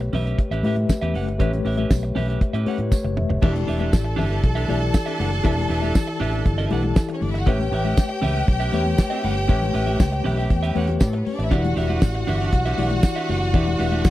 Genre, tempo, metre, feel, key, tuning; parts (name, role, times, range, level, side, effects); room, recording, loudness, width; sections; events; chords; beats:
disco; 119 BPM; 4/4; straight; E dorian; A4 = 435 Hz
electric guitar at the edge of break-up; accompaniment; 0.0-14.1 s; C#4 to F#5; -30 LUFS; right 6 dB; spring reverb
mellow tine electric piano; accompaniment; 0.0-14.1 s; E3 to E5; -26 LUFS; left 4 dB; fast stereo tremolo
fingered electric bass; bass; 0.0-14.1 s; E1 to A2; -24 LUFS; equal
damped 70s drum kit; drums; 0.0-14.1 s; crash cymbal, hi-hat, kick drum, snare drum, toms; -18 LUFS; equal
congas; percussion; 0.1-14.0 s; -30 LUFS; left 3 dB
tambourine; percussion; 0.9-14.1 s; -38 LUFS; right 8 dB
clear symphonic string section; second line; 3.4-14.1 s; G3 to A5; -28 LUFS; right 1 dB
little or no reverb; dry, close 1970s-style studio recording; -19 LUFS; side -15 dB against mid
0.0-3.4 A section; 3.4-14.1 B section
tine electric piano fill 2.7-3.4; drum fill 2.9-3.4
0.0 A9; 3.4 Em7; 7.5 A9; 11.5 Em7
0.38 0.89 | 1.40 1.90 2.41 2.92 | 3.42 3.93 4.43 4.94 | 5.45 5.95 6.46 6.96 | 7.47 7.97 8.48 8.99 | 9.49 10.00 10.50 11.01 | 11.52 12.02 12.53 13.03 | 13.54 14.04